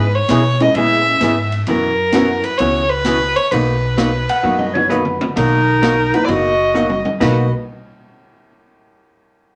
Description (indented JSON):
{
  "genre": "country, western swing",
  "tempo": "130 BPM",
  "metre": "4/4",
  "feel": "swing 68% on 8ths",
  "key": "B major",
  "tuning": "A4 = 439 Hz",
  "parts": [
    { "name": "warm fiddle", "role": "melody", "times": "0.0-7.5 s", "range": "A#4 to E5", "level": "-20 LUFS", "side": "equal", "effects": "none" },
    { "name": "archtop guitar, miked and amplified", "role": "accompaniment", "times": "0.0-7.5 s", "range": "B2 to G#4", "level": "-22 LUFS", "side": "equal", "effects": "none" },
    { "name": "upright bass", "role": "bass", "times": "0.0-7.5 s", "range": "F#1 to B2", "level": "-23 LUFS", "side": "equal", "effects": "none" },
    { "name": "swinging big-band drum kit", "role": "drums", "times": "0.3-7.4 s", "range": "crash cymbal, hi-hat, kick drum, ride cymbal, snare drum, toms", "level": "-28 LUFS", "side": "equal", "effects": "none" },
    { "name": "honky-tonk upright piano", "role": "accompaniment", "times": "0.6-7.5 s", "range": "F#3 to B4", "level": "-23 LUFS", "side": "equal", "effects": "none" },
    { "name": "clean lap steel guitar", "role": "second line", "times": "4.3-7.5 s", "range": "B4 to F#5", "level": "-21 LUFS", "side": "equal", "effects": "none" },
    { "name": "bright clarinet", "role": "second line", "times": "5.4-7.5 s", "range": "D#4 to F#4", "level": "-21 LUFS", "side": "equal", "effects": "none" }
  ],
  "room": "wet small room reverb, RT60 0.5 s",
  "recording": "none",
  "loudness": "-16 LUFS",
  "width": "mono",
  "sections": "0.0-5.4 A section; 5.4-7.2 B section; 7.2-9.1 C section",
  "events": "drum fill 4.4-5.4, 6.7-7.2",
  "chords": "0.0 C#m7/G#; 1.7 F#7sus4; 3.5 Bmaj7",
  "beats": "0.30 0.76 1.22 | 1.68 2.14 2.60 3.06 | 3.52 3.98 4.44 4.90 | 5.36 5.82 6.28 6.74 | 7.20"
}